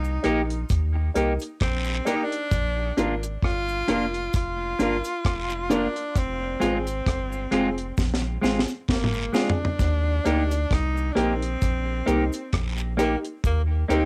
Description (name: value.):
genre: roots reggae.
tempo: 66 BPM.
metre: 4/4.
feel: swing 56% on 16ths.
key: Eb major.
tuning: A4 = 441 Hz.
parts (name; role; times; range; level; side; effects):
bright tenor saxophone; melody; 0.0-14.1 s; Bb3 to F4; -32 LUFS; equal; cassette tape, tape echo.
soft dub sub bass; bass; 0.0-14.1 s; F1 to Eb2; -30 LUFS; equal; none.
cabasa and guiro; percussion; 0.0-14.1 s; none; -40 LUFS; equal; none.
semi-hollow electric guitar; accompaniment; 0.2-14.1 s; Ab3 to G4; -30 LUFS; equal; tape echo.
dark upright piano; stabs; 0.2-14.1 s; C4 to Bb4; -30 LUFS; equal; none.
deep reggae drum kit; drums; 0.2-14.1 s; hi-hat, kick drum, rim click, snare drum, toms; -28 LUFS; equal; cassette tape, tape echo.
room: light reverb.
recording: home recording on cassette.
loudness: -25 LUFS.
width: mono.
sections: 0.0-9.8 A section; 9.8-14.1 A section.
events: drum fill 8.0-9.8.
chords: 0.0 Eb; 2.5 Bb; 6.2 Fm; 9.8 Eb.